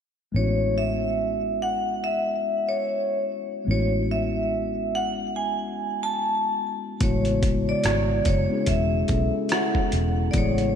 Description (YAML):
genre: R&B, neo-soul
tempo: 72 BPM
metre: 4/4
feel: swing 57% on 16ths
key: A major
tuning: A4 = 438 Hz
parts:
  - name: mellow tine electric piano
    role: accompaniment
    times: 0.3-10.8 s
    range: C#3 to A4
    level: -28 LUFS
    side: left 3 dB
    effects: none
  - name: vintage muted fingered electric bass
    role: bass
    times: 0.3-10.8 s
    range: E1 to B1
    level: -26 LUFS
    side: equal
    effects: none
  - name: vibraphone with medium hard mallets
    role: melody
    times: 0.4-10.8 s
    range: C#5 to A5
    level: -26 LUFS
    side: equal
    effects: ping-pong delay
  - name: dusty soul sampler-style drum kit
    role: drums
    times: 7.0-10.7 s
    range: hi-hat, kick drum, rim click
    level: -26 LUFS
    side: equal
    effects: overdrive
  - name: mellow electric guitar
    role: second line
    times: 7.8-9.8 s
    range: A3 to C#5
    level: -34 LUFS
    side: right 4 dB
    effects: wide subtle chorus, ping-pong delay
room: wet lush hall reverb, RT60 2.8 s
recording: dreamy mix soaked in reverb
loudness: -22 LUFS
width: side -8 dB against mid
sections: 0.3-7.0 A section; 7.0-10.8 B section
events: none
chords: 0.3 A6